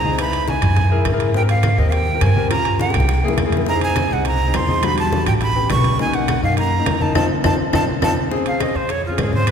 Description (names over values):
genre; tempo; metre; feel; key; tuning
Afro-Cuban jazz; 207 BPM; 4/4; straight; unclear; A4 = 440 Hz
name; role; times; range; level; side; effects
breathy bright jazz flute; melody; 0.0-9.5 s; F4 to C#6; -22 LUFS; right 4 dB; none
warm concert grand piano; accompaniment; 0.0-9.5 s; G3 to Cb5; -22 LUFS; left 4 dB; none
upright bass; bass; 0.0-9.5 s; A1 to Ab2; -20 LUFS; equal; none
congas; percussion; 0.0-9.5 s; none; -25 LUFS; left 1 dB; none
bongos; percussion; 0.2-9.5 s; none; -29 LUFS; left 3 dB; none
claves; percussion; 0.2-9.5 s; none; -33 LUFS; left 6 dB; none
timbales; percussion; 0.2-9.5 s; none; -28 LUFS; right 6 dB; none
room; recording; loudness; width
wet concert hall reverb, RT60 1.9 s; recorded in a church or concert hall; -15 LUFS; side -7 dB against mid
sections
0.0-8.3 A section; 8.3-9.5 B section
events
drum fill 2.8-3.7, 7.2-8.3; band accent 7.2-8.3; flute solo 8.3-9.5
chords
0.2 Dbm7; 0.8 Gb9; 1.3 Abmaj9; 2.5 Gm7b5; 3.1 C7b13; 3.7 Fm7; 4.8 Em7; 5.4 A9; 6.0 Bmaj9; 7.2 F7; 8.3 Dbmaj7